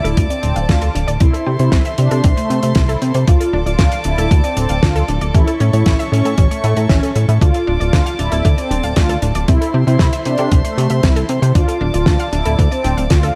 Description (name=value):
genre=italo disco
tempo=116 BPM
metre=4/4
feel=straight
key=D minor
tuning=A4 = 439 Hz
part: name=mellow synth brass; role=melody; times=0.0-13.3 s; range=A3 to F4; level=-24 LUFS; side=equal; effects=chorus, cassette tape, tape echo
part: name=dark studio string section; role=sustained chords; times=0.0-13.4 s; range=A4 to D6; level=-27 LUFS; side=equal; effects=none
part: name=analog pluck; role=arpeggios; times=0.0-13.3 s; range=C4 to Bb5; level=-28 LUFS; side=equal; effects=chorus, vintage 12-bit sampler grit, digital delay
part: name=chorused synth bass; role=bass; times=0.0-13.3 s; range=D1 to C3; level=-19 LUFS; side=equal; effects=none
part: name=damped 70s drum kit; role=drums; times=0.1-13.3 s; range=hi-hat, snare drum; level=-24 LUFS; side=equal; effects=studio ambience
part: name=electronic kick drum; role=drums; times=0.2-13.2 s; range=none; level=-16 LUFS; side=equal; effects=studio ambience
room=light reverb, small room reverb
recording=dark, warm production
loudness=-15 LUFS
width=mono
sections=0.0-13.4 A section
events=none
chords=0.0 D5; 1.2 Am/C; 3.3 Dm; 5.3 A; 7.4 Dm; 9.5 Am/C; 11.6 Dm